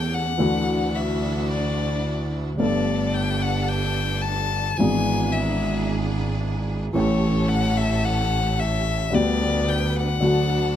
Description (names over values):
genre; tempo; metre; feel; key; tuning
tango; 110 BPM; 4/4; rubato; G major; A4 = 440 Hz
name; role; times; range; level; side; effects
rich violin; second line; 0.0-10.8 s; C#5 to A5; -27 LUFS; left 6 dB; none
warm upright piano; accompaniment; 0.0-10.8 s; G1 to A4; -24 LUFS; left 1 dB; none
clear studio string section; stabs; 0.0-10.8 s; C#4 to B4; -32 LUFS; right 2 dB; none
clear double bass; bass; 0.0-10.8 s; G1 to E2; -26 LUFS; right 2 dB; none
room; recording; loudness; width
light reverb; none; -20 LUFS; side -10 dB against mid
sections
0.0-10.8 A section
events
violin solo 0.0-10.8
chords
0.4 Dadd9; 2.6 Gsus2; 4.8 E7/G#; 7.0 A7; 9.1 G/D; 10.2 D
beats
| 0.40 0.94 1.50 2.05 | 2.60 3.15 3.70 4.25 | 4.79 5.34 5.87 6.41 | 6.95 7.49 8.04 8.59 | 9.13 9.68 10.22